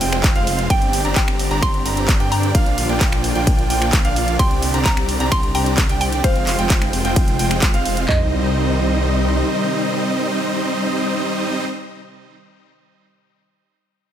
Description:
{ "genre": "EDM, festival progressive house", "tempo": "130 BPM", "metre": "4/4", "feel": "straight", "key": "C minor", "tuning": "A4 = 439 Hz", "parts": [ { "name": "mallet-like synth pluck", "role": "melody", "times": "0.0-11.6 s", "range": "C5 to C6", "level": "-26 LUFS", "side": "equal", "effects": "chorus, ping-pong delay" }, { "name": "lush unison pad", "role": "sustained chords", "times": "0.0-11.6 s", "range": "C3 to G4", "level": "-27 LUFS", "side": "equal", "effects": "chorus, sidechain pumping" }, { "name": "clear grand piano", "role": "arpeggios", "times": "0.0-11.6 s", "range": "Eb5 to Bb5", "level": "-27 LUFS", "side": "right 3 dB", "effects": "sidechain pumping, ping-pong delay" }, { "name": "supersaw chords", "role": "riff", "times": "0.0-11.6 s", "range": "G3 to Bb5", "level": "-22 LUFS", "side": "right 1 dB", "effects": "sidechain pumping, ping-pong delay" }, { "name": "wide detuned saw bass", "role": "bass", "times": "0.0-9.4 s", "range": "F1 to G2", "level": "-22 LUFS", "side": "equal", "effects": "chorus, sidechain pumping" }, { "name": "big-room dance drum kit", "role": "drums", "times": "0.0-8.1 s", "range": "finger snaps, handclaps, hi-hat, ride cymbal", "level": "-24 LUFS", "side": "right 1 dB", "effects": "none" }, { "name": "big-room dance drum kit", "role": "drums", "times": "0.2-8.2 s", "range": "handclaps, kick drum, toms", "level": "-18 LUFS", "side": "equal", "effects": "none" } ], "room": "light reverb, digital ambience", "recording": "none", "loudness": "-16 LUFS", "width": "side -10 dB against mid", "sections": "0.0-8.1 A section; 8.1-11.8 B section", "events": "drop 0.0-8.1", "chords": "0.0 Fm; 0.7 Gsus4; 2.5 Bb; 4.4 Csus2; 6.2 Fm; 8.1 Cm", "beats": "0.24 | 0.70 1.16 1.62 2.09 | 2.55 3.01 3.47 3.93 | 4.39 4.86 5.32 5.78 | 6.24 6.70 7.16 7.62 | 8.09 8.55 9.01 9.47 | 9.93 10.39 10.86 11.32" }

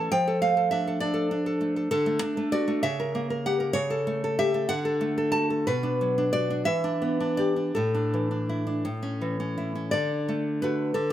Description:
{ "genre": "romantic piece for solo classical guitar", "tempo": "52-69 BPM (dotted quarters)", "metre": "6/8", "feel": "rubato", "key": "D major", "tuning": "A4 = 443 Hz", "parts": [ { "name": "nylon-string guitar", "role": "solo", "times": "0.0-11.1 s", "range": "A2 to A5", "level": "-24 LUFS", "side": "equal", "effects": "none" } ], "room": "light reverb", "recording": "close, detailed microphones", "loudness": "-24 LUFS", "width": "side -12 dB against mid", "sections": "0.0-9.9 A section; 9.9-11.1 B section", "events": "none", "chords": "0.1 Dm/F; 1.9 D; 2.8 C#dim7; 3.8 A7/C#; 4.7 D; 5.7 Bm; 6.7 Em7; 7.7 Asus4; 8.9 A; 9.9 D", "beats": "| 0.12 1.00 | 1.91 2.84 | 3.77 4.70 | 5.67 6.67 | 7.75 8.85 | 9.93 10.96" }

